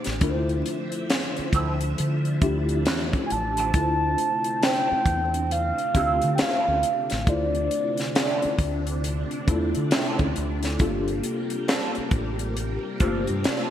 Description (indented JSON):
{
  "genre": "R&B, neo-soul",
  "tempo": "68 BPM",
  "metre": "4/4",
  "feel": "swing 62% on 16ths",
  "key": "D minor",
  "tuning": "A4 = 436 Hz",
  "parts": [
    { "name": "tine electric piano", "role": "accompaniment", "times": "0.0-13.7 s", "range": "A3 to D5", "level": "-29 LUFS", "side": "left 2 dB", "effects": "ensemble chorus" },
    { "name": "phased string machine", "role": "sustained chords", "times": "0.0-13.7 s", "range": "C3 to E5", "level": "-33 LUFS", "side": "right 1 dB", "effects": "ensemble chorus, phaser" },
    { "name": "tight funk drum kit", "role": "drums", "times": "0.0-13.7 s", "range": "hi-hat, kick drum, snare drum", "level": "-26 LUFS", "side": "equal", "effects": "gated reverb" },
    { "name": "deep dub fingered electric bass", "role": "bass", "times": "0.1-13.5 s", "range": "G1 to D3", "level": "-27 LUFS", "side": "equal", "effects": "none" },
    { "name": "electric guitar at the edge of break-up", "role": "second line", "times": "1.5-13.7 s", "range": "F3 to A4", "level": "-33 LUFS", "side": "right 4 dB", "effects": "wah, ensemble chorus" },
    { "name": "mellow horn-like synth lead", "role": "melody", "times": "3.3-9.0 s", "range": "D5 to A5", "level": "-25 LUFS", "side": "right 1 dB", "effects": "chorus" }
  ],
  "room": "moderate lush hall reverb, RT60 2.5 s",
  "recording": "bright 1980s-style digital production, vinyl crackle",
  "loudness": "-22 LUFS",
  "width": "side -10 dB against mid",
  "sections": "0.0-3.7 A section; 3.7-13.7 B section",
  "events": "none",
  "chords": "0.2 Dm9; 10.8 Gm9"
}